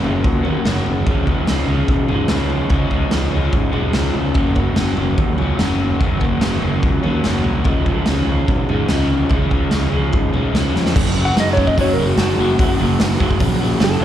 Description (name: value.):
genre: garage rock duo or trio.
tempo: 146 BPM.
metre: 4/4.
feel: straight.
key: F# major from 11.0 s.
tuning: A4 = 441 Hz.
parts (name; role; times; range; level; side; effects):
crunchy overdriven guitar; riff; 0.0-14.0 s; F#2 to C#4; -20 LUFS; equal; none.
fuzz fingered electric bass; bass; 0.0-14.0 s; E1 to G#2; -20 LUFS; equal; overdrive, tube saturation.
raw garage drum kit; drums; 0.0-13.9 s; crash cymbal, hi-hat, kick drum, snare drum, toms; -19 LUFS; equal; none.
clean lap steel guitar; melody; 11.3-14.0 s; F#4 to F#5; -20 LUFS; equal; none.
room: small room reverb.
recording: live gig heard through the venue's PA, club reverb.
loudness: -15 LUFS.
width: side -11 dB against mid.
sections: 0.0-11.0 A section; 11.0-14.0 B section.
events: drum fill 10.7; electric slide guitar solo 11.0-14.0.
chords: 0.0 F#; 1.1 C#; 4.4 F#; 7.7 C#; 11.0 F#5.